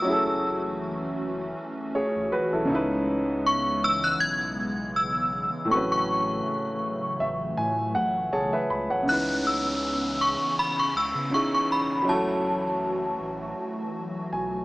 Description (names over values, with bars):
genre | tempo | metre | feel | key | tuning
contemporary R&B | 80 BPM | 4/4 | swing 54% on 16ths | C# minor | A4 = 440 Hz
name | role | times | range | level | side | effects
synth chime | melody | 0.0-14.6 s | A5 to G#6 | -26 LUFS | equal | ensemble chorus, phaser
warm concert grand piano | accompaniment | 0.0-14.6 s | A2 to B5 | -27 LUFS | equal | none
hollow soft pad | sustained chords | 0.0-14.6 s | C#3 to F#4 | -33 LUFS | equal | ensemble chorus
warm sub bass | bass | 0.1-14.6 s | E1 to C#3 | -39 LUFS | equal | none
downlifter | sound effects | 9.1-14.6 s | none | -36 LUFS | equal | none
room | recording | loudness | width
moderate lush hall reverb, RT60 2.7 s | small speaker sound | -24 LUFS | side -20 dB against mid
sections
0.0-9.1 A section; 9.1-14.6 B section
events
grand piano fill 6.8-9.1, 13.9-14.6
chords
0.1 F#m7; 2.7 C#m7; 5.7 A6; 9.1 C#m9; 12.1 F#m7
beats
| 0.07 0.82 1.57 2.32 | 3.07 3.82 4.57 5.32 | 6.07 6.82 7.57 8.32 | 9.07 9.82 10.57 11.32 | 12.07 12.82 13.57 14.32